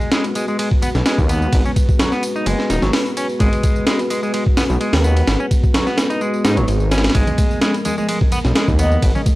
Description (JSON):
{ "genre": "breakbeat, breaks", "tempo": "128 BPM", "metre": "4/4", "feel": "swing 53% on 16ths", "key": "G# dorian", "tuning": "A4 = 439 Hz", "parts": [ { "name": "dark analog pad", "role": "sustained chords", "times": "0.0-9.4 s", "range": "E#3 to B4", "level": "-23 LUFS", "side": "equal", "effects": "chorus, sidechain pumping" }, { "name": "clean electric guitar", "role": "riff", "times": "0.0-9.2 s", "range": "F#3 to D#4", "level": "-23 LUFS", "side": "equal", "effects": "vintage 12-bit sampler grit, low-pass filter, analog delay" }, { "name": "tambourine", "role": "drums", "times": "0.0-9.4 s", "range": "none", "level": "-35 LUFS", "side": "equal", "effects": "none" }, { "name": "breakbeat sampler-style drum kit", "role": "drums", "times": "0.1-9.4 s", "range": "hi-hat, kick drum, ride cymbal, snare drum", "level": "-17 LUFS", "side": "equal", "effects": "none" }, { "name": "detuned saw bass", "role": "bass", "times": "0.9-9.1 s", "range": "D#1 to G#2", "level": "-17 LUFS", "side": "equal", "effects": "tube saturation" }, { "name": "congas", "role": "percussion", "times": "7.3-9.4 s", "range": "none", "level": "-28 LUFS", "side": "right 2 dB", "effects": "none" }, { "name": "breathy flute-like synth lead", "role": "melody", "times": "8.8-8.9 s", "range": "D#5", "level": "-23 LUFS", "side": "left 1 dB", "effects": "chorus, AM radio sound, vintage 12-bit sampler grit, analog delay" } ], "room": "little or no reverb", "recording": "dry, gritty hardware recording, cassette tape", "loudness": "-14 LUFS", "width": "side -18 dB against mid", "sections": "0.0-9.4 A section", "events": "none", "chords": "0.0 G#m9", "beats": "0.12 0.59 1.06 | 1.53 2.00 2.46 2.93 | 3.40 3.87 4.34 4.81 | 5.28 5.75 6.21 6.68 | 7.15 7.62 8.09 8.56 | 9.03" }